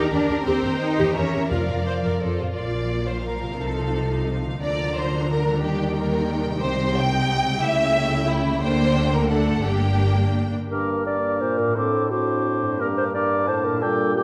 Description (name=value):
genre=classical, dramatic, fast romantic movement for symphony orchestra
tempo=176 BPM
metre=3/4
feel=rubato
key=Bb major, G minor from 6.6 s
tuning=A4 = 440 Hz
part: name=rich symphonic violin section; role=melody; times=0.0-10.5 s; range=G4 to Bb5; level=-37 LUFS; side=equal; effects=none
part: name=warm symphonic violin section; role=second line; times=0.0-10.4 s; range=E4 to Bb5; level=-28 LUFS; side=equal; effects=none
part: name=clear symphonic viola section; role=accompaniment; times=0.0-10.5 s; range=F3 to C5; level=-30 LUFS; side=equal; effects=none
part: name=concert harp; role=arpeggios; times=0.0-14.2 s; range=G2 to C5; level=-32 LUFS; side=equal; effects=none
part: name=rich symphonic double bass section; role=bass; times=0.0-10.5 s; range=G1 to F2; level=-30 LUFS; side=equal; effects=none
part: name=warm symphonic cello section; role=bass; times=0.0-10.5 s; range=G2 to Eb4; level=-29 LUFS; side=equal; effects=none
part: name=timpani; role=percussion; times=1.5-2.0 s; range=F2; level=-32 LUFS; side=equal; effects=none
part: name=dark clarinet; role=second line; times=10.7-14.2 s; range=F#4 to D5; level=-27 LUFS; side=equal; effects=none
part: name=mellow cor anglais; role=second line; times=10.7-14.2 s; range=Bb4 to A5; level=-31 LUFS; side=equal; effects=none
part: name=mellow hollow silver concert flute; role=second line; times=10.7-14.2 s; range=D6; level=-30 LUFS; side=equal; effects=none
part: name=dark bassoon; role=accompaniment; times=10.7-14.2 s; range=G2 to Bb2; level=-31 LUFS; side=equal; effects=none
part: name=dark French horn section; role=sustained chords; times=10.7-14.2 s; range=G3 to D4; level=-31 LUFS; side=equal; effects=none
room=wet scoring stage reverb, RT60 1.7 s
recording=none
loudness=-22 LUFS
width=mono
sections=0.0-2.6 A section; 2.6-10.7 B section; 10.7-14.2 A section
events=none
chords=0.5 Cm/Eb; 1.2 Edim7; 1.5 Bb/F; 2.2 F; 2.6 Bb; 3.6 F7/C; 4.6 Bb/D; 5.6 Ebmaj7; 6.6 Cm; 7.6 A7/C#; 8.6 Gm/D; 9.3 D; 9.7 Gm; 11.8 D7/A; 12.8 Gm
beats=0.12 | 0.46 0.81 1.16 | 1.51 1.87 2.23 | 2.59 2.93 3.27 | 3.60 3.94 4.28 | 4.62 4.96 5.30 | 5.63 5.97 6.30 | 6.63 6.97 7.30 | 7.63 7.96 8.29 | 8.63 8.96 9.31 | 9.65 10.01 10.36 | 10.71 11.06 11.41 | 11.76 12.11 12.45 | 12.80 13.14 13.48 | 13.82 14.16